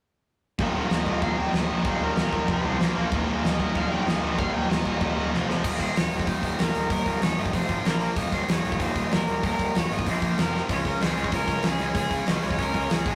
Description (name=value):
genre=punk rock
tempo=190 BPM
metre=4/4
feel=straight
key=unclear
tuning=A4 = 435 Hz
part: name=distorted electric guitar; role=riff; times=0.6-13.2 s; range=Eb2 to Db4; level=-32 LUFS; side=equal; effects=overdrive
part: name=tight distorted guitar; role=riff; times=0.6-5.6 s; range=Eb2 to Bb3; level=-33 LUFS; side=equal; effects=distortion
part: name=fuzz picked electric bass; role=bass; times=0.6-13.2 s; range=Eb1 to Db2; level=-32 LUFS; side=equal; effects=overdrive
part: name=big rock drum kit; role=drums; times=0.6-13.1 s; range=crash cymbal, hi-hat, kick drum, snare drum, toms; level=-29 LUFS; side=equal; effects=none
part: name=overdriven semi-hollow guitar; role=melody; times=0.9-13.1 s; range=Ab4 to G5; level=-34 LUFS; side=equal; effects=none
room=light reverb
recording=rough rehearsal-room recording, warm saturation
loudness=-25 LUFS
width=mono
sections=0.6-5.6 A section; 5.6-13.2 B section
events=drum fill 5.3-5.6, 10.5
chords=0.6 Eb5; 2.5 F5; 2.8 Bb5; 3.1 Eb5; 5.3 F5; 5.6 Eb5; 7.5 F5; 7.9 Bb5; 8.2 Eb5; 10.1 Bb5; 10.4 F5; 10.7 Db5